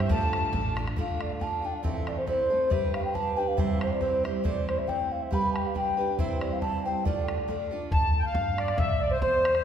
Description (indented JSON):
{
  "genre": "celtic folk, Celtic polka",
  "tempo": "138 BPM",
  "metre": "2/4",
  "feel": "swing 53% on 8ths",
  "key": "D dorian",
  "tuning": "A4 = 440 Hz",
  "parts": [
    { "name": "mellow hollow baroque flute", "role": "melody", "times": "0.0-9.6 s", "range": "C5 to B5", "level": "-28 LUFS", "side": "equal", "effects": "none" },
    { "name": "accordion", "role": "second line", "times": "0.0-0.7, 7.9-9.6 s", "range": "C5 to A5", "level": "-32 LUFS", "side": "left 4 dB", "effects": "light tremolo tuning" },
    { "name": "picked steel-string acoustic guitar", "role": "accompaniment", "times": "0.0-7.9 s", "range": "A2 to C5", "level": "-32 LUFS", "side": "right 4 dB", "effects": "none" },
    { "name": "upright bass", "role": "bass", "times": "0.0-0.9, 7.9-9.6 s", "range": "A1 to G2", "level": "-30 LUFS", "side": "equal", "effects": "none" },
    { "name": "bodhran", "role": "percussion", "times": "0.0-9.6 s", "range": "none", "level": "-31 LUFS", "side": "equal", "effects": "none" }
  ],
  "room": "wet concert hall reverb, RT60 2.0 s",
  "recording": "recorded in a church or concert hall",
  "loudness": "-25 LUFS",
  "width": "side -8 dB against mid",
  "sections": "1.0-7.9 A section; 7.9-9.6 B section",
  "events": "none",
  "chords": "0.1 Dm; 1.8 Am; 2.7 G; 3.6 C; 4.5 Am; 5.3 G; 6.2 C; 7.1 Dm; 7.9 Dmadd11; 8.8 Cadd9"
}